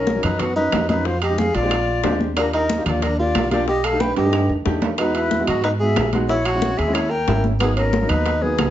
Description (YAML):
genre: Afro-Cuban jazz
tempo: 183 BPM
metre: 4/4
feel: straight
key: unclear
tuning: A4 = 440 Hz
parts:
  - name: breathy tenor saxophone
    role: melody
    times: 0.0-8.7 s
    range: B3 to B4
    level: -22 LUFS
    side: right 1 dB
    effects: none
  - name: breathy concert flute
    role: second line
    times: 0.0-8.7 s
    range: F#4 to G5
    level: -26 LUFS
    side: left 5 dB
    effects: none
  - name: dark baby grand piano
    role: accompaniment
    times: 0.0-8.7 s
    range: F#3 to G4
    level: -25 LUFS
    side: equal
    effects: none
  - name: upright bass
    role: bass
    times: 0.0-8.7 s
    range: G#1 to G#2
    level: -24 LUFS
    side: right 1 dB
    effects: none
  - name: bongos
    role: percussion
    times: 0.1-8.7 s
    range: none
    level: -30 LUFS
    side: left 7 dB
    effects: none
  - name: congas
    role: percussion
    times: 0.1-8.7 s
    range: none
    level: -27 LUFS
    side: left 1 dB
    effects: none
  - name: timbales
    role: percussion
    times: 0.1-8.7 s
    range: none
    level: -27 LUFS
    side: right 6 dB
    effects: none
  - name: claves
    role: percussion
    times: 0.2-8.7 s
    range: none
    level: -32 LUFS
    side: right 6 dB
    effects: none
room: moderate large studio reverb, RT60 0.8 s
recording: nothing above 7.7 kHz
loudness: -17 LUFS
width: side -12 dB against mid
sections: 0.0-8.7 A section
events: drum fill 4.0-5.0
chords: 0.0 Bmaj7; 1.1 Fm7; 1.7 A#13; 2.4 D#maj9; 3.7 B7alt; 5.0 Emaj7; 6.3 A#m7b5; 7.0 D#7b9; 7.6 G#m9